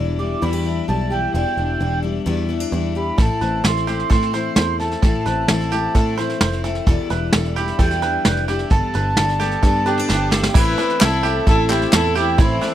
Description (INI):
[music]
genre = indie folk with a building arrangement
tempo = 130 BPM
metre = 4/4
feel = straight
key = A minor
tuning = A4 = 442 Hz
[part]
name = fingerpicked steel-string acoustic guitar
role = accompaniment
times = 0.0-10.6 s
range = E2 to G4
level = -27 LUFS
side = left 4 dB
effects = none
[part]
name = picked twelve-string acoustic guitar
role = accompaniment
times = 0.0-12.7 s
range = E2 to A4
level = -26 LUFS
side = left 6 dB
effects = none
[part]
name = picked electric bass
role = bass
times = 0.0-12.6 s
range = E1 to A2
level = -22 LUFS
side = equal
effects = none
[part]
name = mellow accordion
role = melody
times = 0.2-12.7 s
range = E4 to D6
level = -23 LUFS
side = right 3 dB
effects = none
[part]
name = bluegrass banjo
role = arpeggios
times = 3.2-12.7 s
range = D4 to C5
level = -27 LUFS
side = right 9 dB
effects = none
[part]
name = vintage brush drum kit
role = drums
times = 3.2-12.7 s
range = crash cymbal, kick drum, snare drum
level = -18 LUFS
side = equal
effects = none
[part]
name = rich fiddle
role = second line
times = 9.9-12.7 s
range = C4 to E4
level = -24 LUFS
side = left 5 dB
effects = none
[part]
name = mellow tonewheel organ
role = sustained chords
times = 10.6-12.7 s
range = C4 to A5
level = -30 LUFS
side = left 1 dB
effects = chorus vibrato, slow rotary speaker
[part]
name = group handclap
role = percussion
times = 11.0-12.0 s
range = none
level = -24 LUFS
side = left 4 dB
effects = none
[sound]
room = small room ambience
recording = dry, close 1970s-style studio recording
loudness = -16 LUFS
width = side -12 dB against mid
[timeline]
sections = 0.0-10.6 A section; 10.6-12.7 B section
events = drum fill 10.1-10.6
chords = 0.0 Em7; 3.2 Am; 6.9 Em7; 8.7 Gadd9; 10.6 Am